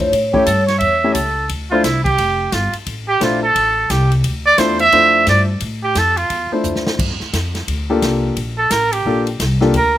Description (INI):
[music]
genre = jazz, small-group swing and bop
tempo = 175 BPM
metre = 4/4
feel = swing 63% on 8ths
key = D minor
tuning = A4 = 439 Hz
[part]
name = vibraphone with soft mallets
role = melody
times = 0.0-1.1 s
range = C#5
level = -17 LUFS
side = equal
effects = none
[part]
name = warm baby grand piano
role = accompaniment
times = 0.0-9.7 s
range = A3 to C#5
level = -18 LUFS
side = left 3 dB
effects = none
[part]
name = upright bass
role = bass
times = 0.0-10.0 s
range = F1 to A2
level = -21 LUFS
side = equal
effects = none
[part]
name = swinging big-band drum kit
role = drums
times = 0.0-9.8 s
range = crash cymbal, hi-hat, kick drum, ride cymbal, snare drum, toms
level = -24 LUFS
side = left 1 dB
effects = none
[part]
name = warm trumpet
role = second line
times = 0.3-6.5, 8.6-10.0 s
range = E4 to E5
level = -14 LUFS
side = right 2 dB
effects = none
[sound]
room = little or no reverb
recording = recorded outdoors, with no room sound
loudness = -13 LUFS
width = side -13 dB against mid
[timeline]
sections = 0.0-1.5 A section; 1.5-10.0 B section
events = trumpet solo 1.5-10.0; drum fill 6.6-7.0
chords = 0.1 A7; 1.5 Dm9; 7.0 Gm9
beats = | 0.12 0.47 0.81 1.15 | 1.50 1.84 2.18 2.53 | 2.87 3.21 3.56 3.90 | 4.24 4.59 4.93 5.27 | 5.62 5.96 6.30 6.65 | 6.99 7.33 7.68 8.02 | 8.37 8.71 9.05 9.39 | 9.74